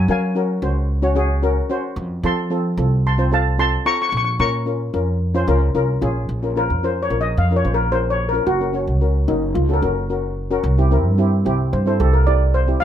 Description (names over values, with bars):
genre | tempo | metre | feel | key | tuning
calypso | 111 BPM | 4/4 | straight | Bb minor | A4 = 440 Hz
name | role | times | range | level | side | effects
upright bass | bass | 0.0-12.8 s | Gb1 to Gb3 | -19 LUFS | right 1 dB | none
steel pan | melody | 0.1-12.8 s | Eb4 to Db6 | -21 LUFS | left 1 dB | none
steel pan | accompaniment | 0.1-12.8 s | C4 to Db5 | -23 LUFS | left 2 dB | none
room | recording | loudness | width
light reverb | close, detailed microphones | -16 LUFS | side -10 dB against mid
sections
0.0-6.3 A section; 6.3-12.8 B section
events
steel pan solo 6.3-12.8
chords
0.0 Gbadd9; 2.0 F; 4.1 Bbm; 8.5 Gb; 10.6 C